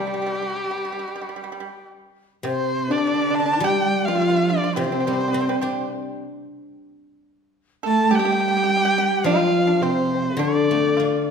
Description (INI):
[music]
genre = chinese traditional, Chinese chamber ensemble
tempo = 105 BPM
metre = 4/4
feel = rubato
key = G shang mode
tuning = A4 = 440 Hz
[part]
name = dark erhu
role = melody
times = 0.0-11.3 s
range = G4 to A5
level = -24 LUFS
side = equal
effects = none
[part]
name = pipa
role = second line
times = 0.0-11.2 s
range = G3 to A4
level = -27 LUFS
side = right 4 dB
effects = none
[part]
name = guzheng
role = accompaniment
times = 0.0-11.3 s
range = C3 to D4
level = -26 LUFS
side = left 5 dB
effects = none
[part]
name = breathy mellow low xiao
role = second line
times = 2.5-11.3 s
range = D4 to G5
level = -24 LUFS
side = left 5 dB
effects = none
[part]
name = dark cello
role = second line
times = 2.5-11.3 s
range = C3 to A3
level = -24 LUFS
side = right 5 dB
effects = none
[sound]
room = wet recital hall reverb, RT60 1.5 s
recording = minimal, uncompressed stereo recording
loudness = -18 LUFS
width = side -6 dB against mid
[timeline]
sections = 0.0-2.5 A section; 2.5-11.3 B section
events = none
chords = none